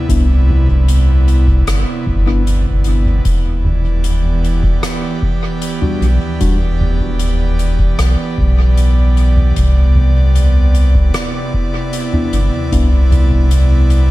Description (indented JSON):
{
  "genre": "ambient dub",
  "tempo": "76 BPM",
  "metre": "4/4",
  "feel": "straight",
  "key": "unclear",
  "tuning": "A4 = 439 Hz",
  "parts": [
    { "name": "airy breathy pad", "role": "sustained chords", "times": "0.0-14.1 s", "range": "C3 to D5", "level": "-20 LUFS", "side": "right 2 dB", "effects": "chorus" },
    { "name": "mellow tine electric piano", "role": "stabs", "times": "0.1-6.6, 12.1-12.9 s", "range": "G3 to F#4", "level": "-24 LUFS", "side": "left 4 dB", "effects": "dub echo" },
    { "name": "warm sub bass", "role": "bass", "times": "0.1-14.1 s", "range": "E1 to C2", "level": "-11 LUFS", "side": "equal", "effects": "none" },
    { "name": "electronic kick drum", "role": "drums", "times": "0.1-13.5 s", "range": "none", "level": "-20 LUFS", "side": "equal", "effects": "none" },
    { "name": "soft-mallet drum kit", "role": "drums", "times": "0.1-14.1 s", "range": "hi-hat, rim click, toms", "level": "-22 LUFS", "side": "equal", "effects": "dub echo" }
  ],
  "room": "studio reverb",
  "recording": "echo-heavy mix",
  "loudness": "-11 LUFS",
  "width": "side -17 dB against mid",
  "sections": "0.0-14.1 A section",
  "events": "none",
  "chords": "0.0 Cmaj9; 3.2 Em7; 9.6 Cmaj9"
}